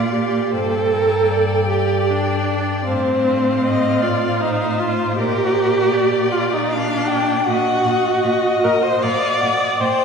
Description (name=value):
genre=classical, slow romantic movement for string quartet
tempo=78 BPM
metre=3/4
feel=rubato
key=Bb major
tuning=A4 = 440 Hz
part: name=rich violin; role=melody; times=0.0-10.0 s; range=D5 to G5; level=-27 LUFS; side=left 5 dB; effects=none
part: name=rich violin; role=second line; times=0.0-10.0 s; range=Bb4 to G5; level=-23 LUFS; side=left 3 dB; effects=none
part: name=rich viola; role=accompaniment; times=0.0-10.0 s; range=C4 to D5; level=-18 LUFS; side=right 2 dB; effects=none
part: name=clear cello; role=bass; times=0.0-9.9 s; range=G2 to Bb2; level=-23 LUFS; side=right 1 dB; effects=none
room=wet church reverb, RT60 3.6 s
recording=recorded in a church or concert hall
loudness=-16 LUFS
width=side -6 dB against mid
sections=0.0-10.0 A section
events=none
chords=0.0 Bb; 0.5 G5; 2.9 F/A; 5.2 Bb; 7.5 Ebm/Bb